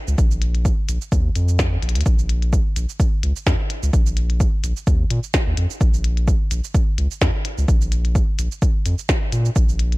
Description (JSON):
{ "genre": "minimal techno", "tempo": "128 BPM", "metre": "4/4", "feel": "swing 55% on 16ths", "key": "Bb minor", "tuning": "A4 = 440 Hz", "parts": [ { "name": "saturated sub bass", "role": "bass", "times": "0.1-10.0 s", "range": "Bb1 to Bb2", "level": "-20 LUFS", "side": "equal", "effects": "tube saturation, sidechain pumping" }, { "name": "minimal click drum kit", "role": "drums", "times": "0.1-10.0 s", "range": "cabasa, hi-hat, snare drum", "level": "-26 LUFS", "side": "equal", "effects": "studio reverb" }, { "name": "electronic kick drum", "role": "drums", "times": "0.2-9.7 s", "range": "none", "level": "-19 LUFS", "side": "equal", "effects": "overdrive, studio reverb" } ], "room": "little or no reverb", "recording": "dark, warm production", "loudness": "-17 LUFS", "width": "side -21 dB against mid", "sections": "0.0-2.1 A section; 2.1-10.0 B section", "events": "drum fill 1.8; drop 2.1-10.0", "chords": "none" }